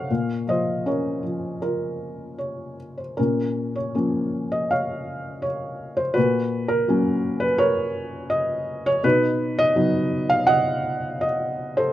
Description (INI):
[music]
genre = classical, lyrical solo piano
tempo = 74-85 BPM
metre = 4/4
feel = rubato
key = Bb phrygian from 3.2 s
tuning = A4 = 441 Hz
[part]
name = felt-muted upright piano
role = solo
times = 0.0-11.9 s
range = Bb2 to Gb5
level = -21 LUFS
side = equal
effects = none
[sound]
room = moderate studio ambience, RT60 0.5 s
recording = none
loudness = -21 LUFS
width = side -13 dB against mid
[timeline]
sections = 0.0-3.2 A section; 3.2-11.9 B section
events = none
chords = 0.1 Bbm; 6.2 Gb/Bb; 9.0 B